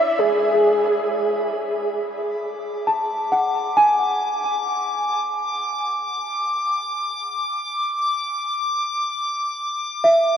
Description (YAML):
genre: ambient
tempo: free time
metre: none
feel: none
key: D lydian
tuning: A4 = 442 Hz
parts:
  - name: breathy flute-like synth lead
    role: melody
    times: 0.0-1.5 s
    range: G#4 to E5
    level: -20 LUFS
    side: equal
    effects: ensemble chorus, tape echo
  - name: drifting glass-harmonics texture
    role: texture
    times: 0.0-10.4 s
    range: B5 to D6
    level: -25 LUFS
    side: left 1 dB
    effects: chorus, built-in reverb
  - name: small celesta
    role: arpeggios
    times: 2.9-10.4 s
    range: E5 to A5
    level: -19 LUFS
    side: equal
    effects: tape echo
room: wet huge ambient reverb, RT60 8.2 s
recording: worn, warbling old tape, cassette tape, warbly pitch drift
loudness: -19 LUFS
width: side -8 dB against mid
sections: 0.0-2.0 A section; 2.0-10.4 B section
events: none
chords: 0.0 C#m (rootless); 2.0 D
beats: free time